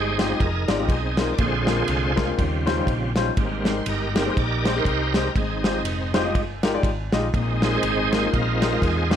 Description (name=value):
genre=uptempo gospel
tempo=121 BPM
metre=4/4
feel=swing 57% on 8ths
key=unclear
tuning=A4 = 440 Hz
part: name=bright tonewheel organ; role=sustained chords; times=0.0-9.2 s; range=Db3 to D5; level=-25 LUFS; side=right 3 dB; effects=slow rotary speaker, chorus vibrato
part: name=hollow-body short-scale fingered electric bass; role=bass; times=0.0-9.2 s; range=F1 to Fb2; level=-27 LUFS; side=equal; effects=none
part: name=warm grand piano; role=accompaniment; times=0.2-9.2 s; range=Ab2 to Eb5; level=-26 LUFS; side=left 4 dB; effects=none
part: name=warm soul drum kit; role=drums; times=0.2-9.2 s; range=kick drum, ride cymbal, snare drum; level=-25 LUFS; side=equal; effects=none
room=light reverb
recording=none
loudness=-20 LUFS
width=side -9 dB against mid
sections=0.0-9.2 A section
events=tonewheel organ solo 0.0-9.2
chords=0.0 Fm7; 1.4 Bb9; 2.4 Eb13; 3.4 Abmaj9; 5.4 Fm9; 7.3 Bb7sus4; 8.3 Bb9sus4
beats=0.40 0.89 | 1.39 1.89 2.38 2.88 | 3.37 3.87 4.36 4.86 | 5.35 5.85 6.34 6.84 | 7.34 7.84 8.33 8.83